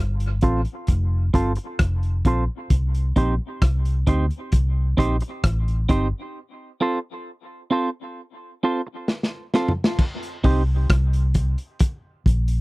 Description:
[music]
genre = dub reggae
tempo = 66 BPM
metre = 4/4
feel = straight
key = unclear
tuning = A4 = 440 Hz
[part]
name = vintage muted fingered electric bass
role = bass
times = 0.0-12.6 s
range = F1 to D2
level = -21 LUFS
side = equal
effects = none
[part]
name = crunchy breakbeat drum kit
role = drums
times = 0.2-12.6 s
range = crash cymbal, hi-hat, kick drum, rim click, snare drum, toms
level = -20 LUFS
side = equal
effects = none
[part]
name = clean electric guitar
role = accompaniment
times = 0.4-10.6 s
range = C4 to C5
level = -25 LUFS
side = right 2 dB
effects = low-pass filter, dub echo
[sound]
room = little or no reverb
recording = dry, close 1970s-style studio recording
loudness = -20 LUFS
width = side -22 dB against mid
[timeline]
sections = 0.0-10.0 A section; 10.0-12.6 B section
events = filter sweep on clean electric guitar 0.0-10.0; break 6.3-10.0; drum fill 9.1-10.0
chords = 0.0 F; 2.7 Cm; 6.3 F; 10.0 N.C.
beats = 0.88 1.79 | 2.70 3.61 4.52 5.43 | 6.34 7.25 8.16 9.07 | 9.98 10.89 11.80

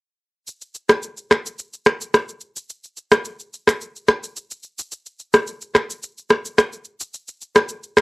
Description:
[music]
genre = afrobeats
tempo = 108 BPM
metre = 4/4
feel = straight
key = none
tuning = none
[part]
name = electronic shaker, rim click and finger snaps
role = drums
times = 0.5-8.0 s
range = none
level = -16 LUFS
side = equal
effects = cassette tape
[sound]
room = moderate small room reverb, RT60 0.5 s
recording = home recording on cassette, lossy compression artefacts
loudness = -18 LUFS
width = side -27 dB against mid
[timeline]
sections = 0.5-8.0 A section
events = none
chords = none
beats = | 0.47 1.03 1.58 2.14 | 2.69 3.25 3.81 4.36 | 4.92 5.47 6.03 6.58 | 7.14 7.70

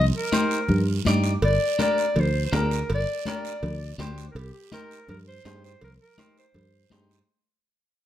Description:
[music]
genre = latin, cumbia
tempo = 164 BPM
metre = 4/4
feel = straight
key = C minor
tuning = A4 = 442 Hz
[part]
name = clear clarinet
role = melody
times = 0.0-7.1 s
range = G4 to D5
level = -27 LUFS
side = equal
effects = plate reverb
[part]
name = fingered electric bass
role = bass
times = 0.0-7.2 s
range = G1 to G2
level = -24 LUFS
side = equal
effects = none
[part]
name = clean electric guitar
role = accompaniment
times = 0.3-7.2 s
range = D4 to D5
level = -29 LUFS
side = left 1 dB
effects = none
[part]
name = congas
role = percussion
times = 0.3-7.1 s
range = none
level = -29 LUFS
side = left 3 dB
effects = none
[part]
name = guiro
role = percussion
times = 0.3-7.3 s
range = none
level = -38 LUFS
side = right 11 dB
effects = none
[part]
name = cowbell and timbales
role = percussion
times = 1.4-7.1 s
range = none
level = -33 LUFS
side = right 3 dB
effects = none
[sound]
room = light reverb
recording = none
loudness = -21 LUFS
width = side -12 dB against mid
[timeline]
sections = 0.0-7.3 A section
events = fade-out 0.0-7.3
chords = 0.0 Cm7; 1.4 Gm; 4.4 Cm7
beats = 0.33 0.69 1.06 | 1.43 1.79 2.16 2.53 | 2.90 3.26 3.63 3.99 | 4.36 4.72 5.09 5.46 | 5.82 6.19 6.55 6.92

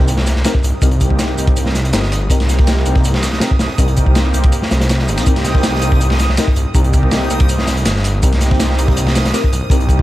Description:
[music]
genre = drum and bass, jungle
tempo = 162 BPM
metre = 4/4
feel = straight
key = C minor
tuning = A4 = 440 Hz
[part]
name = detuned saw bass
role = bass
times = 0.0-10.0 s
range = G1 to C2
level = -16 LUFS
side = equal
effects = none
[part]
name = crunchy breakbeat drum kit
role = drums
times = 0.0-10.0 s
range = hi-hat, kick drum, snare drum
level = -14 LUFS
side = equal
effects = none
[part]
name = backwards swelling texture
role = texture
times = 0.8-10.0 s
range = Eb6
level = -28 LUFS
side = right 2 dB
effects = built-in reverb
[part]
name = dusty soul sampler-style drum kit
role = drums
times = 0.1-10.0 s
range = hi-hat, shaker, snare drum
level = -27 LUFS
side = right 2 dB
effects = high-pass filter on perc, high-pass filter on hats, high-pass filter on snare
[part]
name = deep mellow chord stab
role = stabs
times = 0.5-9.8 s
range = C4 to Bb4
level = -25 LUFS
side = left 4 dB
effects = chorus, phaser, dub echo
[part]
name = lush unison pad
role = sustained chords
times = 0.8-10.0 s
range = Bb3 to G4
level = -23 LUFS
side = equal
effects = chorus
[sound]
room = small room ambience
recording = none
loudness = -12 LUFS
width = side -16 dB against mid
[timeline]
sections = 0.0-10.0 A section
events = none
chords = 0.0 Cm7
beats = 0.08 0.45 | 0.82 1.19 1.56 1.93 | 2.30 2.67 3.04 3.42 | 3.79 4.16 4.53 4.90 | 5.27 5.64 6.01 6.38 | 6.75 7.12 7.49 7.86 | 8.23 8.60 8.97 9.34 | 9.71

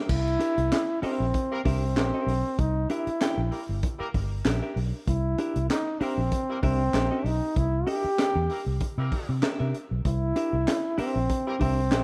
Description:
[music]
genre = funk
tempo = 96 BPM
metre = 4/4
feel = swing 56% on 16ths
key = C mixolydian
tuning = A4 = 441 Hz
[part]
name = warm trombone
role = melody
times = 0.0-12.0 s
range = C4 to G4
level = -30 LUFS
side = equal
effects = none
[part]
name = clean electric guitar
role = accompaniment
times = 0.0-12.0 s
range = D4 to G5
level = -35 LUFS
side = equal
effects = none
[part]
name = vintage muted fingered electric bass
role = bass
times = 0.1-12.0 s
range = G1 to C3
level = -30 LUFS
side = equal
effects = none
[part]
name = crunchy breakbeat drum kit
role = drums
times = 0.1-12.0 s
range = crash cymbal, handclaps, hi-hat, kick drum, snare drum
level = -32 LUFS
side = equal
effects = none
[part]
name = clear horn section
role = second line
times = 1.0-11.6 s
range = G3 to Bb4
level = -42 LUFS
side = equal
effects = none
[sound]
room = light reverb, small room ambience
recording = rough home demo mix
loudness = -27 LUFS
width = mono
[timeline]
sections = 0.1-12.0 A section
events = none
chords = 0.1 C9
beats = | 0.10 0.72 1.34 1.96 | 2.58 3.21 3.83 4.45 | 5.07 5.70 6.32 6.94 | 7.56 8.19 8.81 9.43 | 10.05 10.67 11.30 11.92

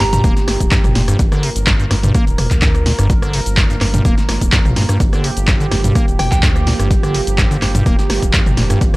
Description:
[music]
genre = acid house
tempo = 126 BPM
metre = 4/4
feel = swing 53% on 16ths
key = G minor pentatonic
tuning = A4 = 440 Hz
[part]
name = soft synth bell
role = melody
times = 0.0-0.2, 6.2-6.4 s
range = G5 to Bb5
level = -24 LUFS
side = right 1 dB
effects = chorus, analog delay
[part]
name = warm analog pad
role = sustained chords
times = 0.0-9.0 s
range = F3 to C5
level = -24 LUFS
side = right 3 dB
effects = chorus, sidechain pumping
[part]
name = acid bass, square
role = riff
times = 0.0-9.0 s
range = G2 to Bb3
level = -19 LUFS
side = equal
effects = sidechain pumping
[part]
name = round analog bass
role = bass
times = 0.0-8.9 s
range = D1 to G2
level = -20 LUFS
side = equal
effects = tube saturation, sidechain pumping
[part]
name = dusty soul sampler-style drum kit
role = drums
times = 0.0-9.0 s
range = hi-hat, snare drum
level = -32 LUFS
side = equal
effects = none
[part]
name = punchy analog drum machine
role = drums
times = 0.0-9.0 s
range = cabasa, handclaps, hi-hat, rim click, snare drum, toms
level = -19 LUFS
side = equal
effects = overdrive
[part]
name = electronic kick drum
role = drums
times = 0.2-8.9 s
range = none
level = -15 LUFS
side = equal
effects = overdrive
[sound]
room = little or no reverb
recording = dry, gritty hardware recording, transformer saturation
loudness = -12 LUFS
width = side -21 dB against mid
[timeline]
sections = 0.0-9.0 A section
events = none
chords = 0.0 Gm7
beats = 0.24 0.72 | 1.19 1.67 2.15 2.62 | 3.10 3.57 4.05 4.53 | 5.00 5.48 5.96 6.43 | 6.91 7.38 7.86 8.34 | 8.81

